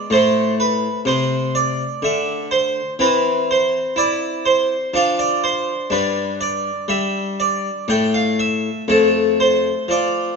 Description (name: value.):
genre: classical, baroque-style suite movement for harpsichord.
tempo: 62 BPM.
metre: 3/4.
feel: rubato.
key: C major.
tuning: A4 = 440 Hz.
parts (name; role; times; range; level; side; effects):
harpsichord; solo; 0.0-10.4 s; F2 to G5; -16 LUFS; equal; none.
room: moderate recital hall reverb, RT60 1.7 s.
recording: nothing above 7.7 kHz.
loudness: -16 LUFS.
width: side -4 dB against mid.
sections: 0.0-10.4 A section.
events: none.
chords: 0.1 Am; 3.0 C/E; 4.9 Dm7/F; 5.9 G5; 7.9 N.C.; 8.9 F6.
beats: | 0.09 1.05 2.01 | 2.98 3.95 4.92 | 5.90 6.89 7.88 | 8.88 9.88.